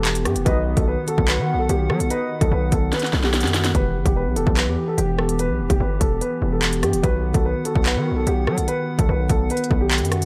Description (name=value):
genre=hip hop, drill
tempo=146 BPM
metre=4/4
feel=half-time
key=E harmonic minor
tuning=A4 = 440 Hz
part: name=dark concert grand piano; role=melody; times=0.0-10.3 s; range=F#4 to B4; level=-28 LUFS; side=equal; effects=none
part: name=mellow tine electric piano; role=accompaniment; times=0.0-10.3 s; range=D#3 to A4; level=-30 LUFS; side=equal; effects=none
part: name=warbly tape-like pad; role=sustained chords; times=0.0-10.3 s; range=D#3 to F#5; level=-32 LUFS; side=equal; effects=chorus, built-in reverb
part: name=distorted 808-style bass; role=bass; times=0.0-10.3 s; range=E1 to F#3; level=-25 LUFS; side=equal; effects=distortion
part: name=drill drum kit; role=drums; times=0.0-10.3 s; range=handclaps, hi-hat, kick drum, rim click, snare drum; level=-24 LUFS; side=equal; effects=none
part: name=warm velvety synth lead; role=second line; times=0.5-2.5 s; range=D#5 to F#5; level=-33 LUFS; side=equal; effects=chorus, tremolo, tape echo
room=little or no reverb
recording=none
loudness=-21 LUFS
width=mono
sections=0.0-3.7 A section; 3.7-10.3 A section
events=drum fill 2.9-3.7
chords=0.5 B; 3.7 Em; 7.0 B